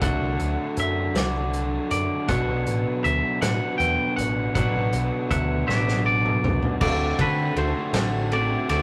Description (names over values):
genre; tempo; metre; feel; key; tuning
indie rock; 53 BPM (dotted quarters); 6/8; straight; unclear; A4 = 439 Hz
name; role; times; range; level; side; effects
twangy electric guitar; melody; 0.0-8.8 s; B4 to G5; -29 LUFS; equal; none
hollow soft pad; sustained chords; 0.0-8.8 s; F#3 to A5; -41 LUFS; equal; none
overdriven electric guitar; riff; 0.0-8.8 s; B2 to F#4; -30 LUFS; equal; none
overdriven electric guitar; riff; 0.0-8.8 s; B2 to F#4; -34 LUFS; equal; none
deep dub picked electric bass; bass; 0.0-8.8 s; A1 to D3; -29 LUFS; equal; none
loose indie drum kit; drums; 0.0-8.8 s; crash cymbal, hi-hat, kick drum, ride cymbal, snare drum, toms; -30 LUFS; equal; none
room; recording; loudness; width
wet booth ambience, RT60 0.2 s; rough rehearsal-room recording; -24 LUFS; mono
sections
0.0-6.8 A section; 6.8-8.8 B section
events
drum fill 5.7-6.8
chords
0.0 D; 2.3 Bm; 6.8 D7